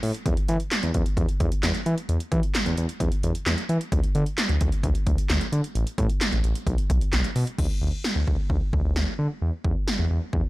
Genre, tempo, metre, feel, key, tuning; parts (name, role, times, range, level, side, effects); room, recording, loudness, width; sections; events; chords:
synth-pop; 131 BPM; 4/4; straight; A4 = 441 Hz
smooth synth bass; bass; 0.0-10.4 s; A1 to E3; -24 LUFS; equal
80s electronic pad drums; drums; 0.0-10.4 s; crash cymbal, handclaps, hi-hat, kick drum, snare drum; -25 LUFS; equal; overdrive
little or no reverb; blown-out, overdriven recording, overdrive; -22 LUFS; side -19 dB against mid
0.0-7.6 A section; 7.6-10.5 B section